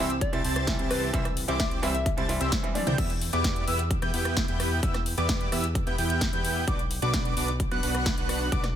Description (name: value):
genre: EDM, festival progressive house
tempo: 130 BPM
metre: 4/4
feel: straight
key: E minor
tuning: A4 = 441 Hz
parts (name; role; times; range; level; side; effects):
- bright concert grand piano; accompaniment; 0.0-3.0 s; E3 to E4; -33 LUFS; right 3 dB; sidechain pumping, tape echo
- wide unison lead; arpeggios; 0.0-8.7 s; D6 to A6; -33 LUFS; equal; lush chorus, sidechain pumping, tape echo
- dense compressed supersaw; riff; 0.0-8.7 s; B3 to A5; -32 LUFS; right 1 dB; sidechain pumping, tape echo
- fat analog bass; bass; 0.0-8.8 s; B1 to E2; -31 LUFS; equal; tube saturation, sidechain pumping
- big-room dance drum kit; drums; 0.1-8.7 s; crash cymbal, hi-hat, rim click, snare drum, toms; -32 LUFS; left 1 dB; none
- soft struck synth lead; melody; 0.2-3.0 s; B4 to E5; -35 LUFS; left 3 dB; chorus, tape echo
- electronic kick drum; drums; 0.2-8.6 s; none; -29 LUFS; equal; none
room: little or no reverb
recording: none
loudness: -24 LUFS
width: side -10 dB against mid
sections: 0.0-3.0 A section; 3.0-8.8 A section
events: drop 0.0-3.0, 3.0-8.8; drum fill 2.8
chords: 0.0 C; 3.0 Em; 6.7 Bm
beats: 0.21 0.68 | 1.14 1.60 2.06 2.52 | 2.98 3.44 3.91 4.37 | 4.83 5.29 5.75 6.21 | 6.68 7.14 7.60 8.06 | 8.52